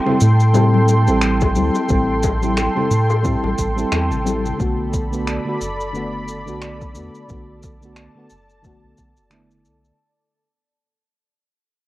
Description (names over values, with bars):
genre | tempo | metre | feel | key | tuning
sunset chillout | 89 BPM | 4/4 | swing 57% on 16ths | unclear | A4 = 440 Hz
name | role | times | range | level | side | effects
mellow FM electric piano | accompaniment | 0.0-10.0 s | D3 to A4 | -22 LUFS | equal | chorus, auto-pan, cassette tape, analog delay
lush unison pad | sustained chords | 0.0-10.0 s | A4 to C6 | -23 LUFS | equal | chorus, cassette tape
congas and bongos | percussion | 0.1-4.6 s | none | -26 LUFS | left 7 dB | none
round analog bass | bass | 0.2-9.9 s | F#1 to A2 | -18 LUFS | equal | none
electronic cabasa and finger snaps | drums | 0.2-10.0 s | none | -28 LUFS | equal | overdrive, cassette tape
electronic kick drum | drums | 1.4-9.1 s | none | -23 LUFS | equal | overdrive, cassette tape
room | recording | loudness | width
light reverb | home recording on cassette | -15 LUFS | side -16 dB against mid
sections
0.0-10.0 A section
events
fade-out 0.0-10.0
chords
0.0 Am7; 4.6 Bm7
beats
0.55 1.22 | 1.90 2.57 3.24 3.92 | 4.59 5.27 5.94 6.61 | 7.29 7.96 8.64 9.31